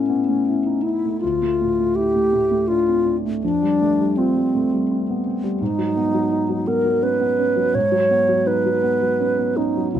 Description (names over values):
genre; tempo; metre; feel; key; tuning
classical, impressionist duo for alto flute and grand piano; 82 BPM; 3/4; rubato; unclear; A4 = 439 Hz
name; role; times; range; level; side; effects
mellow alto flute; melody; 0.0-10.0 s; C4 to C#5; -19 LUFS; equal; none
dark grand piano; accompaniment; 0.0-10.0 s; C#2 to F4; -22 LUFS; equal; none
room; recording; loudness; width
light reverb; dark, warm production; -17 LUFS; side -10 dB against mid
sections
0.0-10.0 A section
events
none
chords
0.0 Aadd9; 1.2 Dmadd9; 3.4 Fadd9; 5.6 B69/G#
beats
0.46 | 1.22 1.95 2.69 | 3.43 4.16 4.89 | 5.61 6.32 7.04 | 7.75 8.48 9.20 | 9.95